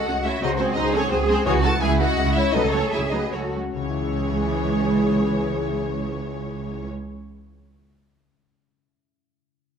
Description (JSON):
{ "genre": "classical, dramatic, fast romantic movement for symphony orchestra", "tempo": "135-176 BPM", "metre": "3/4", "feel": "rubato", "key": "C# minor", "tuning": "A4 = 440 Hz", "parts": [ { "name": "warm symphonic violin section", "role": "melody", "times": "0.0-6.9 s", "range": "B#4 to A5", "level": "-29 LUFS", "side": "left 2 dB", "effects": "none" }, { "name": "mellow large flute ensemble", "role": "second line", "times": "0.0-6.9 s", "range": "G#4 to F#5", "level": "-29 LUFS", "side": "left 3 dB", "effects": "none" }, { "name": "warm symphonic violin section", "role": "second line", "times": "0.0-6.9 s", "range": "B#3 to A4", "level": "-31 LUFS", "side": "equal", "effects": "none" }, { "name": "concert harp", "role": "arpeggios", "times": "0.0-7.7 s", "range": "C#3 to E5", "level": "-31 LUFS", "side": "left 13 dB", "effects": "none" }, { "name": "dark studio double bass section", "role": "bass", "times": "0.0-6.9 s", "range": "C#2", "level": "-26 LUFS", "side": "right 4 dB", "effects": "none" }, { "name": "warm symphonic cello section", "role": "bass", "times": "0.0-6.9 s", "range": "C#2 to A4", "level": "-28 LUFS", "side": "right 2 dB", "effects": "none" }, { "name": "warm symphonic viola section", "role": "accompaniment", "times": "0.1-6.9 s", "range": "E3 to C#4", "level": "-29 LUFS", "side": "right 3 dB", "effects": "none" }, { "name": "dark French horn section", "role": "sustained chords", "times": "0.4-6.9 s", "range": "E3 to A4", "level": "-30 LUFS", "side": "left 5 dB", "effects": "none" } ], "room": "moderate scoring stage reverb, RT60 1.8 s", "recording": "none", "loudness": "-20 LUFS", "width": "side -7 dB against mid", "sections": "0.0-3.8 A section; 3.8-6.1 B section", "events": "slowing down 0.9-3.8", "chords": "0.4 G#7/C#; 1.5 C#m; 2.5 F#m/C#; 3.8 C#m" }